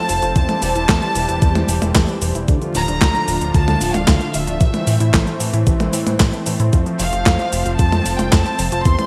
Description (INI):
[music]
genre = italo disco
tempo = 113 BPM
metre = 4/4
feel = straight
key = F major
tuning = A4 = 441 Hz
[part]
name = warm chamber violin section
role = melody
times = 0.0-9.1 s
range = E5 to C6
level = -25 LUFS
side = equal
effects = digital delay
[part]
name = warm analog pad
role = sustained chords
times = 0.0-9.1 s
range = D3 to C5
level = -27 LUFS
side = equal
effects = lush chorus
[part]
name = unison pluck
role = arpeggios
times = 0.0-9.1 s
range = D3 to F4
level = -30 LUFS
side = equal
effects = cassette tape, digital delay
[part]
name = chorused synth bass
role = bass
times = 0.1-9.0 s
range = D1 to A2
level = -23 LUFS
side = equal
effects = none
[part]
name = clean 12-bit digital drum machine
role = drums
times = 0.1-9.1 s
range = cabasa, handclaps, hi-hat, snare drum, toms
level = -23 LUFS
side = equal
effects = gated reverb
[part]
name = electronic kick drum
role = drums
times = 0.4-9.0 s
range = none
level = -18 LUFS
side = equal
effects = none
[sound]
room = light reverb, digital ambience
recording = bright 1980s-style digital production, vinyl crackle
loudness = -17 LUFS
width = mono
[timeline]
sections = 0.0-9.1 A section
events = none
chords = 0.4 C/E; 2.5 Dm; 4.6 Am; 6.7 F